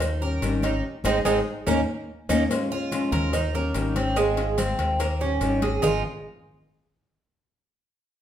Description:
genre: latin, Cuban son and guajira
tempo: 144 BPM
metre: 4/4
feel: straight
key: Ab major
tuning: A4 = 438 Hz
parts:
  - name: flamenco guitar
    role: accompaniment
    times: 0.0-6.0 s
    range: Eb3 to G4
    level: -28 LUFS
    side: left 4 dB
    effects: none
  - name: Cuban tres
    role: arpeggios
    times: 0.0-6.0 s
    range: Ab3 to Bb4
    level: -26 LUFS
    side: right 4 dB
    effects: none
  - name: modern bright fingered electric bass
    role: bass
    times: 0.0-6.0 s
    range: Ab1 to Eb2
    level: -28 LUFS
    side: equal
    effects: none
  - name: congas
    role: percussion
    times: 0.0-5.9 s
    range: none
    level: -34 LUFS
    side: equal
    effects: none
  - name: cowbell and bongos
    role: percussion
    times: 0.0-5.9 s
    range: none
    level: -33 LUFS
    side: left 3 dB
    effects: none
  - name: maracas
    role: percussion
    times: 0.0-5.9 s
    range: none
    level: -40 LUFS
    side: right 4 dB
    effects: none
room: wet large studio reverb, RT60 1.1 s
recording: band playing live in one room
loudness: -22 LUFS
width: side -10 dB against mid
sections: 0.0-2.5 A section; 2.5-5.8 B section; 5.8-7.5 C section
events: band accent 0.8-2.5; drum fill 2.1-2.5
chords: 0.0 Eb7; 0.8 Ab; 1.7 Eb5; 2.5 Bbm7; 3.3 Eb7; 4.2 Ab6; 5.0 Eb7; 5.8 Ab5

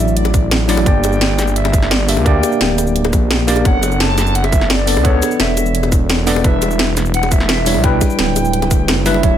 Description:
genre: liquid drum and bass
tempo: 172 BPM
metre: 4/4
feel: straight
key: unclear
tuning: A4 = 442 Hz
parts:
  - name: hollow clarinet-like synth lead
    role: melody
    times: 0.0-9.4 s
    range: C#5 to A5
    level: -22 LUFS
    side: equal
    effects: phaser, wide subtle chorus, ping-pong delay
  - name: mellow tine electric piano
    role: accompaniment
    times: 0.0-9.4 s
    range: F#3 to E5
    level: -18 LUFS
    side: equal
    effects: medium stereo tremolo
  - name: swelling detuned saw bass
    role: bass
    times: 0.0-9.4 s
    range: D1 to D2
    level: -17 LUFS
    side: equal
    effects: none
  - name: downlifter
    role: sound effects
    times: 0.0-0.9 s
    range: none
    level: barely audible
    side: none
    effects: none
  - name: drum and bass drum kit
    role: drums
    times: 0.1-9.3 s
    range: hi-hat, shaker, snare drum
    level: -18 LUFS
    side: right 1 dB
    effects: overdrive, studio ambience
  - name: bongos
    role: percussion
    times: 0.2-9.2 s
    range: none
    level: -26 LUFS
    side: left 6 dB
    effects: none
  - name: electronic kick drum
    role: drums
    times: 0.3-9.3 s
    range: none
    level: -14 LUFS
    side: equal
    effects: overdrive, studio ambience
room: digital ambience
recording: none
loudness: -12 LUFS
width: side -10 dB against mid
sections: 0.0-9.4 A section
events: none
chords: 0.0 Dmaj9; 0.9 Gm; 3.7 Bm9/F#; 6.4 Em7

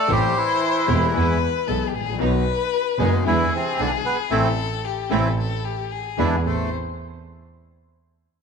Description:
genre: tango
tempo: 114 BPM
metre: 4/4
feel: rubato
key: A minor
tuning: A4 = 440 Hz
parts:
  - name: bandoneon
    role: melody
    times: 0.0-6.7 s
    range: C3 to B4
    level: -24 LUFS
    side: right 2 dB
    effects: slapback echo
  - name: dark violin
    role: second line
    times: 0.0-6.7 s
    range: G4 to D5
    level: -26 LUFS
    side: left 9 dB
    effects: none
  - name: warm concert grand piano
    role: accompaniment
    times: 0.1-6.7 s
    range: E1 to G#4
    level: -28 LUFS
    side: left 12 dB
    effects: none
  - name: warm studio string section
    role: stabs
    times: 0.1-6.7 s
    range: F#3 to G4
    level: -31 LUFS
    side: right 12 dB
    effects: none
  - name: warm double bass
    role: bass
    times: 0.1-6.7 s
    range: E1 to E2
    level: -24 LUFS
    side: right 3 dB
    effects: none
room: moderate echo chamber reverb, RT60 1.9 s, studio ambience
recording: 1960s-style stereo with parts hard left and right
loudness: -19 LUFS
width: side -5 dB against mid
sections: 0.0-6.4 A section; 6.4-8.4 B section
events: band accent 4.3-6.4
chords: 0.1 Am7; 1.1 E; 2.2 B; 3.3 E7; 4.3 Am; 5.9 E7; 6.4 Am

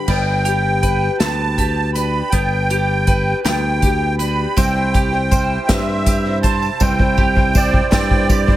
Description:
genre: indie folk with a building arrangement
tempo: 54 BPM (dotted quarters)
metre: 6/8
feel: straight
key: G major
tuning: A4 = 443 Hz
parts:
  - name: musette accordion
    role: melody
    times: 0.0-8.6 s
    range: D5 to B5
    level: -20 LUFS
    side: right 2 dB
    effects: dub echo
  - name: fingerpicked steel-string acoustic guitar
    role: accompaniment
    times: 0.0-4.5 s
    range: G2 to B4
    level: -26 LUFS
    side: left 7 dB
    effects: dub echo
  - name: bowl-back mandolin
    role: arpeggios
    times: 0.1-8.6 s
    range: B3 to C5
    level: -26 LUFS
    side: right 6 dB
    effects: dub echo
  - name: picked electric bass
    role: bass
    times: 0.1-8.6 s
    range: G1 to G2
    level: -20 LUFS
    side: equal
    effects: none
  - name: unplugged drum kit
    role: drums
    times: 0.1-8.6 s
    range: crash cymbal, hi-hat, kick drum, snare drum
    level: -17 LUFS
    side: equal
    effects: none
  - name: felt-muted upright piano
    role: accompaniment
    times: 4.6-8.6 s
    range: C2 to C5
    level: -29 LUFS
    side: right 7 dB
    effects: none
  - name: picked swing-style acoustic guitar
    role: accompaniment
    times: 4.6-8.6 s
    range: C3 to C5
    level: -28 LUFS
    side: left 6 dB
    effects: dub echo
  - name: tambourine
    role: percussion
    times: 4.6-8.5 s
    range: none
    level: -30 LUFS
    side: left 6 dB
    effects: none
room: small room ambience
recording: echo-heavy mix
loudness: -14 LUFS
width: side -14 dB against mid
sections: 0.1-8.6 A section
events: build-up 0.1-8.6; drum fill 0.1-8.6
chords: 0.1 G; 4.6 C

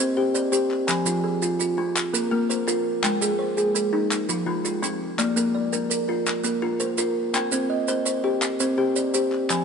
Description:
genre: southern african traditional, mbira-style interlocking cycle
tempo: 112 BPM (dotted quarters)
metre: 12/8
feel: straight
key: unclear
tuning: A4 = 440 Hz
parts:
  - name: kalimba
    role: arpeggios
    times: 0.0-9.6 s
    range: F3 to C5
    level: -24 LUFS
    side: left 3 dB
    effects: none
  - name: kalimba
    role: arpeggios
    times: 0.0-9.6 s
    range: F3 to Ab5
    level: -25 LUFS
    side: right 3 dB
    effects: none
  - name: maracas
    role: percussion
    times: 0.3-9.6 s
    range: none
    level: -30 LUFS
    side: right 6 dB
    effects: none
  - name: group handclap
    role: percussion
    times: 0.7-9.6 s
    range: none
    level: -30 LUFS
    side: left 3 dB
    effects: none
room: moderate plate reverb, RT60 3.5 s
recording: heard from further back in the room, nothing above 10.6 kHz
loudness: -21 LUFS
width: side -6 dB against mid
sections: 0.0-9.5 A section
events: none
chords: 0.0 C5; 0.9 Fm; 2.0 Bb5; 3.0 Ab; 4.1 Fm; 5.2 Bb; 7.3 Cm

